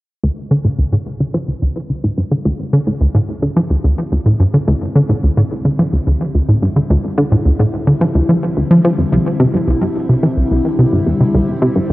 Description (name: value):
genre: ambient, sequencer-driven space music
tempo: 108 BPM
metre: 4/4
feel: straight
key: unclear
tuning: A4 = 440 Hz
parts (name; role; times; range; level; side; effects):
- evolving wavetable pad; sustained chords; 1.6-11.9 s; D3 to E4; -21 LUFS; left 1 dB; chorus, built-in reverb, phaser, cassette tape
- plucky analog bass; riff; 0.2-11.9 s; C2 to F3; -13 LUFS; equal; cassette tape, tape echo
room: wet lush hall reverb, RT60 2.5 s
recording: home recording on cassette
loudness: -13 LUFS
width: side -18 dB against mid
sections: 0.2-11.9 A section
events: fade-in on ambient pad 0.2-11.9; filter sweep on analog synth bass 0.2-11.9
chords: 0.2 D7(no3); 9.1 C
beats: | 0.23 0.79 1.34 1.90 | 2.45 3.01 3.57 4.12 | 4.68 5.23 5.79 6.34 | 6.90 7.45 8.01 8.57 | 9.12 9.68 10.23 10.79 | 11.34 11.90